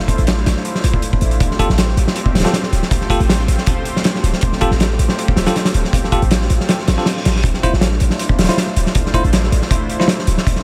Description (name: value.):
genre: drum and bass, jungle.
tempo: 159 BPM.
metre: 4/4.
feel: straight.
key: unclear.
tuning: A4 = 440 Hz.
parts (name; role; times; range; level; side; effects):
lush unison pad; sustained chords; 0.0-10.6 s; A3 to C5; -27 LUFS; equal; chorus.
oversized low-tuned drum kit; drums; 0.0-10.6 s; hi-hat, kick drum, snare drum; -19 LUFS; equal; none.
warm 808-style bass; bass; 0.2-10.6 s; D1 to A1; -19 LUFS; equal; none.
bell-like tine electric piano; stabs; 1.6-10.1 s; E4 to C5; -26 LUFS; equal; dub echo.
reverse cymbal; sound effects; 6.9-7.4 s; none; -34 LUFS; equal; none.
room: small room reverb.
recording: none.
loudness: -16 LUFS.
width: mono.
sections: 0.0-10.6 A section.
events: reverse cymbal 6.9-7.4.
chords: 0.0 Dm9; 1.4 Fadd9/D; 7.4 Dm9.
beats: 0.27 0.65 1.03 | 1.41 1.78 2.16 2.54 | 2.92 3.29 3.67 4.05 | 4.42 4.80 5.18 5.56 | 5.93 6.31 6.69 7.07 | 7.44 7.82 8.20 8.58 | 8.95 9.33 9.71 10.09 | 10.46.